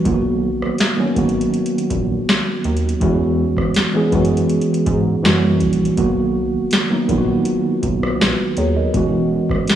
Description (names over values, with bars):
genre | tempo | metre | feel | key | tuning
contemporary R&B | 81 BPM | 4/4 | straight | B major | A4 = 441 Hz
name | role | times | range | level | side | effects
mellow tine electric piano | accompaniment | 0.0-9.8 s | D#3 to D#5 | -17 LUFS | right 1 dB | medium stereo tremolo, cassette tape
rubbery square bass | bass | 0.1-9.6 s | E1 to G#2 | -22 LUFS | right 1 dB | none
booming analog drum machine | drums | 0.1-9.8 s | hi-hat, kick drum, rim click, snare drum | -20 LUFS | equal | cassette tape
room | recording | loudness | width
light reverb, digital ambience | home recording on cassette, small room reverb | -15 LUFS | side -10 dB against mid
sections
0.0-9.8 A section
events
none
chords
0.1 Bmaj7; 3.0 E69; 5.2 F#7b9; 6.0 Bmaj7; 8.9 E69